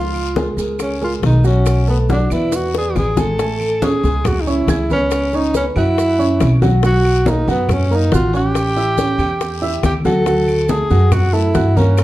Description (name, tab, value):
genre	Afro-Cuban jazz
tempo	140 BPM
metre	4/4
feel	straight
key	unclear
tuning	A4 = 441 Hz
part	breathy tenor saxophone	melody	0.0-12.0 s	Cb4 to A4	-19 LUFS	equal	none
part	warm upright piano	accompaniment	0.0-12.0 s	F3 to G#6	-20 LUFS	right 1 dB	none
part	upright bass	bass	0.0-12.0 s	A1 to G2	-17 LUFS	equal	none
part	claves	percussion	0.1-12.0 s	none	-38 LUFS	equal	none
part	congas	percussion	0.2-12.0 s	none	-22 LUFS	left 1 dB	none
part	maracas	percussion	0.2-12.0 s	none	-36 LUFS	right 8 dB	none
part	bongos	percussion	0.4-12.0 s	none	-26 LUFS	left 7 dB	none
part	guiro	percussion	0.4-12.0 s	none	-36 LUFS	left 9 dB	none
room	moderate large studio reverb, RT60 0.9 s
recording	dark, warm production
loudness	-13 LUFS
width	side -15 dB against mid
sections	0.0-3.4 A section; 3.4-12.0 B section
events	drum fill 2.5-3.4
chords	0.0 Db6; 1.7 Cbm7; 2.5 E7; 3.4 Amaj7; 5.1 Dbm11; 6.0 Gb5; 6.8 Cb5; 8.6 A6; 10.3 D